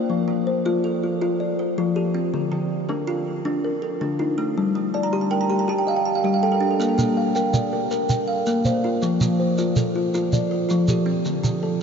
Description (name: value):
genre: southern african traditional, mbira-style interlocking cycle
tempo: 108 BPM (dotted quarters)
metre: 12/8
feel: straight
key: unclear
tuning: A4 = 440 Hz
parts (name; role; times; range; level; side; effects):
- kalimba; arpeggios; 0.0-11.8 s; D3 to G5; -22 LUFS; left 3 dB; none
- kalimba; arpeggios; 0.0-11.8 s; D3 to C6; -24 LUFS; right 5 dB; tape echo
- shekere; percussion; 6.8-11.6 s; none; -26 LUFS; right 2 dB; none
room: wet huge ambient reverb, RT60 6.3 s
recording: dreamy mix soaked in reverb, nothing above 7.5 kHz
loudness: -20 LUFS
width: side -6 dB against mid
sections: 0.0-11.8 A section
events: kalimba fill 4.8-6.8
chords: 0.1 F; 2.3 Dm; 4.6 Gm; 6.8 Bb; 9.0 F; 11.3 D5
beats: | 0.09 0.65 1.21 1.77 | 2.33 2.89 3.45 4.01 | 4.57 5.13 5.68 6.24 | 6.80 7.36 7.92 8.47 | 9.03 9.59 10.14 10.70 | 11.26 11.81